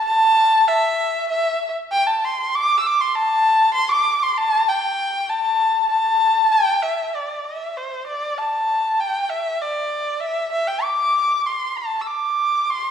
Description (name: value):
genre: chinese traditional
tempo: 97 BPM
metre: 2/4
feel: straight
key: A yu mode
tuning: A4 = 442 Hz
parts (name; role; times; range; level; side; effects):
- rich erhu; solo; 0.1-12.9 s; C5 to E6; -17 LUFS; equal; none
room: wet recital hall reverb, RT60 1.5 s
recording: recorded in a church or concert hall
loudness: -17 LUFS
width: side -8 dB against mid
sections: 0.0-6.8 A section; 6.8-12.9 B section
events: none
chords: none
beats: 0.04 | 0.65 1.28 | 1.90 2.52 | 3.13 3.74 | 4.35 4.96 | 5.58 6.20 | 6.83 7.45 | 8.07 8.69 | 9.30 9.91 | 10.51 11.13 | 11.76 12.38